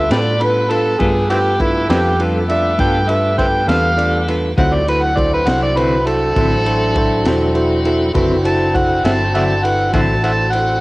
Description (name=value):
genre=slow blues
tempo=67 BPM (dotted quarters)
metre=12/8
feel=straight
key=D mixolydian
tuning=A4 = 440 Hz
part: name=overdriven harmonica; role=second line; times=0.0-10.8 s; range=C4 to A5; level=-17 LUFS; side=right 1 dB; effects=cassette tape
part: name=barky tine electric piano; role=accompaniment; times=0.0-10.8 s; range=D4 to D5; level=-20 LUFS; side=right 1 dB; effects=cassette tape
part: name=tonewheel organ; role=sustained chords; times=0.0-10.8 s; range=F#3 to C#5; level=-23 LUFS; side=left 1 dB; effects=slow rotary speaker, cassette tape
part: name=warm saxophone section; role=sustained chords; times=0.0-10.8 s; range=B3 to A4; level=-27 LUFS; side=equal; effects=cassette tape
part: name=vintage muted fingered electric bass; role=bass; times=0.0-10.8 s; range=E1 to A2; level=-20 LUFS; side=equal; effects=none
part: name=clean electric guitar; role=accompaniment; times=0.1-10.1 s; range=D3 to A4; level=-23 LUFS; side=left 2 dB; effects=tremolo, cassette tape
part: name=crunchy breakbeat drum kit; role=drums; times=0.1-10.7 s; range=kick drum, ride cymbal, snare drum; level=-23 LUFS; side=equal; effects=cassette tape
room=light reverb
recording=home recording on cassette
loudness=-13 LUFS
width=side -22 dB against mid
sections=0.0-10.8 A section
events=harmonica solo 0.0-10.8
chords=0.0 G9; 4.6 D9